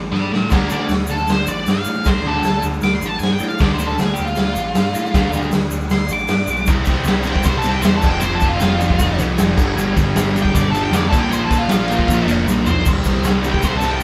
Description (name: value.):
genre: garage rock duo or trio.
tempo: 156 BPM.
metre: 4/4.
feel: straight.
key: D minor.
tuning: A4 = 439 Hz.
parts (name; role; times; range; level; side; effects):
growling picked electric bass; bass; 0.0-14.0 s; F1 to A2; -26 LUFS; equal; overdrive.
octave-fuzz lead guitar; melody; 0.1-14.0 s; F4 to D6; -24 LUFS; equal; distortion.
raw garage drum kit; drums; 0.1-13.9 s; crash cymbal, hi-hat, kick drum, ride cymbal, snare drum, toms; -20 LUFS; equal; none.
fuzz guitar; riff; 0.5-14.0 s; F2 to D4; -22 LUFS; equal; distortion.
tube shaker; percussion; 0.5-14.0 s; none; -37 LUFS; equal; none.
room: light reverb.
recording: band playing live in one room.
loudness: -17 LUFS.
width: mono.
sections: 0.0-6.7 A section; 6.7-14.0 B section.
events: lead electric guitar solo 0.0-6.7; drum fill 0.1-0.5, 12.5-12.9.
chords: 0.0 Dm; 6.7 C; 8.0 F5; 9.6 G5; 11.1 Bb5; 12.9 C5.